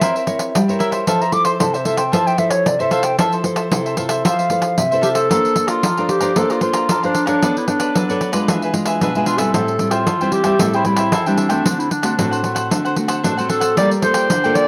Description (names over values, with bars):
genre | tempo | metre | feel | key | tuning
samba and choro | 113 BPM | 4/4 | straight | F major | A4 = 440 Hz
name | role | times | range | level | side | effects
hollow wooden flute | melody | 0.0-5.2 s | C5 to D6 | -21 LUFS | equal | cassette tape
cavaquinho | accompaniment | 0.0-14.7 s | D4 to Bb5 | -26 LUFS | equal | cassette tape
nylon-string guitar | accompaniment | 0.0-14.7 s | A2 to Db5 | -23 LUFS | equal | cassette tape
pandeiro | percussion | 0.0-14.7 s | none | -23 LUFS | equal | none
warm clarinet | second line | 5.0-14.7 s | D4 to D5 | -21 LUFS | equal | cassette tape
room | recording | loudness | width
moderate spring reverb, RT60 1.5 s, small room ambience | home recording on cassette | -17 LUFS | mono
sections
0.0-5.3 A section; 5.3-14.7 B section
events
flute solo 0.0-5.3; clarinet solo 5.3-14.7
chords
0.0 C7b9; 1.1 Fmaj7; 5.3 Bbmaj9; 7.4 Bm9; 8.5 E7b9; 9.5 Am7; 11.7 D7; 13.8 Gm9